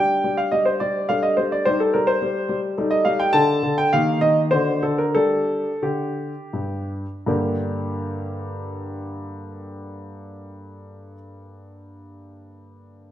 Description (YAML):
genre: classical-period piano sonatina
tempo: 82-108 BPM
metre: 3/4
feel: rubato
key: G minor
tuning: A4 = 440 Hz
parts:
  - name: clear grand piano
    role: solo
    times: 0.0-13.1 s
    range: G2 to A5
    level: -20 LUFS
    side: equal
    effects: none
room: wet recital hall reverb, RT60 1.6 s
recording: minimal, uncompressed stereo recording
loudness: -19 LUFS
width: side -11 dB against mid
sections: 0.0-7.3 A section; 7.3-11.6 B section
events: slowing down 2.5-7.3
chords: 0.0 G5; 1.1 D5/G; 1.7 Cm/G; 2.8 F9/G; 3.3 D5; 3.9 Eb; 4.5 D7; 5.2 G5; 7.3 Gm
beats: 0.53 1.10 | 1.67 2.23 2.79 | 3.35 3.92 4.52 | 5.15 5.83 6.54 | 7.26 7.98 8.69 | 9.41 10.12 10.84